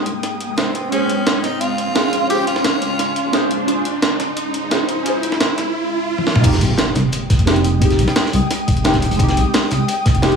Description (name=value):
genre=liquid drum and bass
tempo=174 BPM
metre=4/4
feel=straight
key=F minor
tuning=A4 = 439 Hz
part: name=deep mellow chord stab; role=accompaniment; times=0.0-10.4 s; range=Ab3 to C5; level=-22 LUFS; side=equal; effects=chorus, phaser, tape echo
part: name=ethereal airy pad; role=sustained chords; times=0.0-10.4 s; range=Ab3 to Eb6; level=-24 LUFS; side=equal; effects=ensemble chorus, built-in reverb, tremolo, sidechain pumping
part: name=riser and impact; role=sound effects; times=0.0-7.8 s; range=none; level=-24 LUFS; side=right 2 dB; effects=none
part: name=smooth synth bass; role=bass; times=0.1-10.4 s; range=Eb1 to C2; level=-21 LUFS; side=equal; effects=tube saturation, high-pass filter
part: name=breakbeat sampler-style drum kit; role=drums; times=0.1-10.4 s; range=crash cymbal, hi-hat, snare drum, toms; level=-20 LUFS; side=right 1 dB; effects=none
part: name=raspy tenor saxophone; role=melody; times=0.6-3.5 s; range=C4 to G4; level=-23 LUFS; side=equal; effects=dub echo
part: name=crunchy breakbeat drum kit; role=drums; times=6.4-10.3 s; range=hi-hat, snare drum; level=-26 LUFS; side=left 1 dB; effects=high-pass filter on hats, high-pass filter on snare, high-pass filter on room
part: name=electronic kick drum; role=drums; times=6.4-10.1 s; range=none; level=-17 LUFS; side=equal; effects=none
room=moderate digital room reverb, RT60 1.1 s, small room ambience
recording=studio ambience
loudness=-15 LUFS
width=side -6 dB against mid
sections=0.0-6.4 A section; 6.4-10.4 B section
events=build-up 0.0-6.4; riser 0.0-6.4; drum fill 6.2; drop 6.4-10.4; impact 6.4-7.8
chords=0.0 Fm9; 0.9 Bbm9; 6.4 Fm9